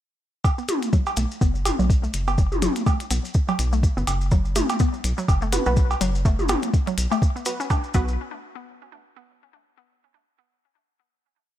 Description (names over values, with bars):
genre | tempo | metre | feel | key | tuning
minimal techno | 124 BPM | 4/4 | swing 57% on 16ths | unclear | A4 = 440 Hz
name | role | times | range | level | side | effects
electronic kick drum | drums | 0.4-8.1 s | none | -20 LUFS | equal | none
electronic cowbell and toms | percussion | 0.4-7.8 s | none | -26 LUFS | equal | ping-pong delay
maracas | percussion | 0.4-8.2 s | none | -34 LUFS | left 2 dB | none
hollow square pluck | riff | 0.6-8.2 s | F#3 to D4 | -29 LUFS | left 1 dB | chorus, sidechain pumping, ping-pong delay
electronic hi-hat | drums | 0.7-7.6 s | none | -32 LUFS | left 3 dB | none
rubbery square bass | bass | 1.2-8.2 s | F#1 to B1 | -24 LUFS | equal | sidechain pumping
filtered dub chord stab | stabs | 5.5-8.1 s | B3 to B4 | -29 LUFS | right 4 dB | chorus, cassette tape, ping-pong delay
room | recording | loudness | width
little or no reverb | none | -20 LUFS | side -12 dB against mid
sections
0.4-8.2 groove; 8.2-10.1 final hit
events
none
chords
0.4 B5; 8.2 N.C.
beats
| 0.45 0.93 1.41 1.90 | 2.38 2.87 3.35 3.83 | 4.32 4.80 5.28 5.77 | 6.25 6.74 7.22 7.70